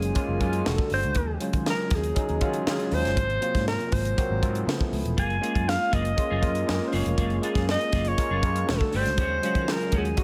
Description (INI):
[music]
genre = polished 1980s jazz-funk pop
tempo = 120 BPM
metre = 4/4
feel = straight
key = Gb lydian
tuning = A4 = 441 Hz
[part]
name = breathy alto saxophone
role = melody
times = 0.0-10.2 s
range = Ab4 to Ab5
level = -31 LUFS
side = equal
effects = tape echo
[part]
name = overdriven tine electric piano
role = accompaniment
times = 0.0-10.2 s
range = F3 to Ab4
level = -33 LUFS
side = equal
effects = lush chorus
[part]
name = chamber organ, principal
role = sustained chords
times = 0.0-10.2 s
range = C3 to Ab4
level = -39 LUFS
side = equal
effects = none
[part]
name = fretless electric bass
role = bass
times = 0.0-10.1 s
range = E1 to Eb3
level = -31 LUFS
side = equal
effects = ensemble chorus
[part]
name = tight funk drum kit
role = drums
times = 0.0-10.2 s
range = hi-hat, kick drum, snare drum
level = -30 LUFS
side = equal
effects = gated reverb
[part]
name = semi-hollow electric guitar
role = riff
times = 5.2-10.2 s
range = Ab3 to Ab4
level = -37 LUFS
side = equal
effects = analog chorus
[sound]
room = light reverb, studio reverb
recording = none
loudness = -25 LUFS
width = mono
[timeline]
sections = 0.0-10.2 A section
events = none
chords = 0.0 Gbmaj9; 0.7 Em11; 1.2 Ebm11; 3.2 Ab13; 4.7 Db7alt; 5.2 Gbmaj9; 8.7 Em11; 9.2 Ebm11